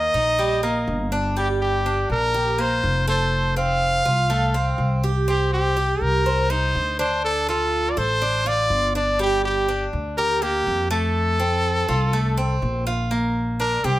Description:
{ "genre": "latin, Cuban son and guajira", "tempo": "123 BPM", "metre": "4/4", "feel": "straight", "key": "unclear", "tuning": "A4 = 440 Hz", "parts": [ { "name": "brilliant trumpet", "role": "melody", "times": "0.0-14.0 s", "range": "G4 to F5", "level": "-22 LUFS", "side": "equal", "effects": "plate reverb" }, { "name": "Cuban tres", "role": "arpeggios", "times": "0.0-14.0 s", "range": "G3 to C5", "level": "-26 LUFS", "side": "right 2 dB", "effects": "none" }, { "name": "upright bass", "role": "bass", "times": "0.0-14.0 s", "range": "F1 to F2", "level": "-24 LUFS", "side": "equal", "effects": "none" } ], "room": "light reverb", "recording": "none", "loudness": "-19 LUFS", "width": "side -15 dB against mid", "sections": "0.0-13.1 A section", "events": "none", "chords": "0.0 Eb; 1.4 Gm7; 3.3 F; 5.3 Cm; 7.2 Dm; 9.2 Gm7; 11.2 F; 13.1 Bb", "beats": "0.39 0.88 | 1.36 1.85 2.34 2.83 | 3.32 3.81 4.30 4.79 | 5.28 5.77 6.26 6.75 | 7.24 7.73 8.22 8.71 | 9.20 9.69 10.18 10.66 | 11.15 11.64 12.13 12.62 | 13.11 13.60" }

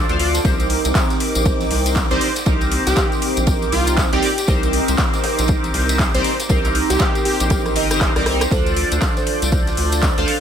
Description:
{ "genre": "deep house", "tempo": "119 BPM", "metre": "4/4", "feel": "swing 60% on 16ths", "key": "unclear", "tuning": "A4 = 440 Hz", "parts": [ { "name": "chorused polysynth", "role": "stabs", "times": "0.0-10.3 s", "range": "C4 to F5", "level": "-20 LUFS", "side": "right 1 dB", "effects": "phaser, sidechain pumping" }, { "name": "soft string machine", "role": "texture", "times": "0.0-10.4 s", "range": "D6 to G6", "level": "-31 LUFS", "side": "equal", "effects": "phaser, ensemble chorus, sidechain pumping" }, { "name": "rubbery square bass", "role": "bass", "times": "0.1-10.2 s", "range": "G1 to D2", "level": "-22 LUFS", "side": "equal", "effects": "sidechain pumping" }, { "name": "deep house drum kit", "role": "drums", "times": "0.1-10.4 s", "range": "handclaps, hi-hat, rim click", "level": "-24 LUFS", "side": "left 1 dB", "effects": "overdrive, studio reverb" }, { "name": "tambourine", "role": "percussion", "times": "0.1-10.3 s", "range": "none", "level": "-29 LUFS", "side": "left 3 dB", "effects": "none" }, { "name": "deep reggae drum kit", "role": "drums", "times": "0.2-10.4 s", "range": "hi-hat, ride cymbal, snare drum", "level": "-32 LUFS", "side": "right 1 dB", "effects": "high-pass filter on cymbals, studio reverb, high-pass filter on hats, high-pass filter on snare, high-pass filter on room" }, { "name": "electronic kick drum", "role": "drums", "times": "0.4-10.1 s", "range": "none", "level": "-20 LUFS", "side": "equal", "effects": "overdrive, studio reverb" }, { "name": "plucky unison lead", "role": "melody", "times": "2.1-7.7 s", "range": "F4 to C5", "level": "-24 LUFS", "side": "equal", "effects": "tape echo" }, { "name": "marimba with medium mallets", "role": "melody", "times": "8.5-9.5 s", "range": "A4 to C5", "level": "-28 LUFS", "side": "right 4 dB", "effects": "tape echo" } ], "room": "light reverb, small room ambience", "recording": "none", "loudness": "-15 LUFS", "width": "side -8 dB against mid", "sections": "0.0-10.4 A section", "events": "drum fill 7.5-8.5", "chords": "0.4 Cm7; 8.5 Dm7", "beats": "| 0.45 0.95 1.46 1.96 | 2.46 2.97 3.47 3.98 | 4.48 4.99 5.49 5.99 | 6.50 7.00 7.51 8.01 | 8.51 9.02 9.52 10.03" }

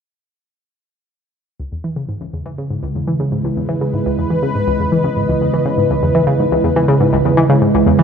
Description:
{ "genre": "ambient, sequencer-driven space music", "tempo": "122 BPM", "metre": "4/4", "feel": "straight", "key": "C# minor", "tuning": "A4 = 440 Hz", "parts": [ { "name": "sweeping resonant pad", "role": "sustained chords", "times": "1.6-8.0 s", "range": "C#3 to D#5", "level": "-16 LUFS", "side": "right 1 dB", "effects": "chorus" }, { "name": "analog pluck", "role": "riff", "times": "1.6-8.0 s", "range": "C#2 to E3", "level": "-17 LUFS", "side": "left 1 dB", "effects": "chorus, ping-pong delay" } ], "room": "wet concert hall reverb, RT60 2.3 s", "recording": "none", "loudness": "-13 LUFS", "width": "side -7 dB against mid", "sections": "1.6-8.0 A section", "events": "fade-in on synth arpeggio sound 1.6-8.0; fade-in on analog synth pad 1.6-8.0", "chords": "1.6 C#m7", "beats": "| 1.60 2.09 2.58 3.07 | 3.56 4.06 4.55 5.04 | 5.53 6.02 6.52 7.01 | 7.50 7.99" }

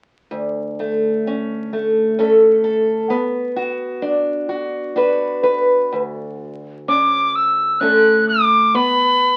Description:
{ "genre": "celtic folk, Celtic slow air", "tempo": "64 BPM", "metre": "3/4", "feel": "rubato", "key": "D major", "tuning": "A4 = 441 Hz", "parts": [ { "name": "picked old ladder-braced acoustic guitar", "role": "accompaniment", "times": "0.3-9.4 s", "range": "D2 to B4", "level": "-19 LUFS", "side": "equal", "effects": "none" }, { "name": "bright wooden whistle", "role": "melody", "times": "6.9-9.4 s", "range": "B5 to F#6", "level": "-16 LUFS", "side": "equal", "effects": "none" } ], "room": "moderate studio reverb, RT60 0.5 s", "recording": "very old 78 rpm record, vinyl crackle", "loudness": "-17 LUFS", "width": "mono", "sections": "0.3-5.9 A section; 5.9-9.4 B section", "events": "none", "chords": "0.3 D5; 3.1 Bm; 5.9 D5; 8.8 N.C.", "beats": "| 0.31 1.27 2.19 | 3.11 4.03 4.97 | 5.93 6.89 7.82 | 8.75" }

